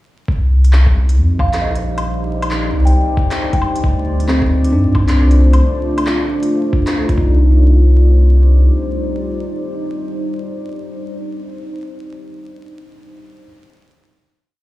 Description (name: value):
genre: future garage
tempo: 135 BPM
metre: 4/4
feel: swing 62% on 16ths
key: C dorian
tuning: A4 = 440 Hz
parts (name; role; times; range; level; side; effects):
- deep dark ambient pad; sustained chords; 1.1-11.0 s; G3 to D5; -22 LUFS; equal; chorus, built-in reverb, sidechain pumping
- warm sub bass; bass; 0.3-8.7 s; Bb1 to G2; -11 LUFS; equal; sidechain pumping
- electronic kick drum; drums; 0.3-7.3 s; none; -17 LUFS; equal; overdrive
- organic electronic drum kit; drums; 0.6-7.2 s; handclaps, hi-hat, woodblock; -24 LUFS; left 1 dB; overdrive
- kalimba; melody; 1.4-3.9 s; Eb5 to G5; -24 LUFS; left 1 dB; vintage 12-bit sampler grit, tape echo
- bell-like tine electric piano; accompaniment; 4.3-13.5 s; C4 to Eb4; -22 LUFS; left 1 dB; sidechain pumping, tape echo
room: light reverb, digital ambience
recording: played on a big sound system in a bare room, large studio reverb, vinyl crackle, studio reverb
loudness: -12 LUFS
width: side -17 dB against mid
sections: 0.3-7.4 groove; 7.4-11.0 final chord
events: none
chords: 0.3 Cmadd9; 3.8 Dm7; 7.2 Cm; 7.4 Cmadd9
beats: | 0.28 0.73 1.17 1.62 | 2.06 2.51 2.95 3.40 | 3.84 4.29 4.73 5.17 | 5.62 6.06 6.51 6.95 | 7.40 7.84 8.29 8.73 | 9.17 9.62 10.06 10.51